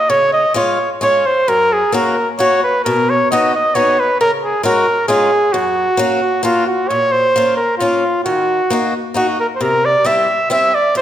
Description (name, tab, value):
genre	alpine folk, alpine dance band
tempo	133 BPM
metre	3/4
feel	rubato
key	F# major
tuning	A4 = 440 Hz
part	clear flugelhorn	melody	0.0-11.0 s	F4 to E5	-13 LUFS	right 1 dB	none
part	picked swing-style acoustic guitar	accompaniment	0.1-11.0 s	F2 to F#4	-19 LUFS	left 2 dB	none
room	wet recital hall reverb, RT60 1.5 s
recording	none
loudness	-12 LUFS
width	side -11 dB against mid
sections	0.0-6.9 A section; 6.9-11.0 B section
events	none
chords	0.1 C#; 1.5 F#; 2.9 B; 4.2 C#sus4; 5.1 C#; 5.5 F#; 6.9 Bbm; 8.3 Ebm; 9.6 C